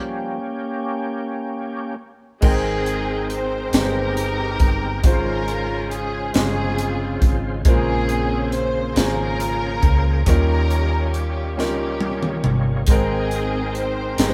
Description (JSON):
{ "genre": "slow gospel", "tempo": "46 BPM (dotted quarters)", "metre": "6/8", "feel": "straight", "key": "Ab major", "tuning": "A4 = 440 Hz", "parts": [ { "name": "overdriven tonewheel organ", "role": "sustained chords", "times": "0.0-14.3 s", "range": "Db3 to G5", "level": "-31 LUFS", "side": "equal", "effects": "slow rotary speaker, chorus vibrato" }, { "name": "muted studio string section", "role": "melody", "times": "2.4-14.3 s", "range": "Bb3 to C5", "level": "-28 LUFS", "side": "equal", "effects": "none" }, { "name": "bright concert grand piano", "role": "accompaniment", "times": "2.4-14.3 s", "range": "Ab2 to G5", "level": "-27 LUFS", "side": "equal", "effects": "none" }, { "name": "hollow-body short-scale fingered electric bass", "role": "bass", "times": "2.4-14.3 s", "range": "G1 to Eb2", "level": "-26 LUFS", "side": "equal", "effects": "none" }, { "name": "crisp fusion drum kit", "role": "drums", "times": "2.4-14.3 s", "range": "crash cymbal, hi-hat, kick drum, snare drum, toms", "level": "-22 LUFS", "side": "equal", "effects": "none" } ], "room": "light reverb", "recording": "band playing live in one room", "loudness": "-21 LUFS", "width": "mono", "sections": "0.0-2.4 A section; 2.4-14.3 B section", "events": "tonewheel organ solo 0.0-2.4; stop 0.0-2.4; drum fill 11.6-12.9", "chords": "0.0 Bbm6/F; 2.4 Abmaj9; 5.0 Dbmaj7/Ab; 7.7 Bbm9; 10.3 Eb9; 12.9 Abmaj9", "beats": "1.12 | 2.43 3.73 | 5.04 6.35 | 7.66 8.96 | 10.27 11.58 | 12.88 14.19" }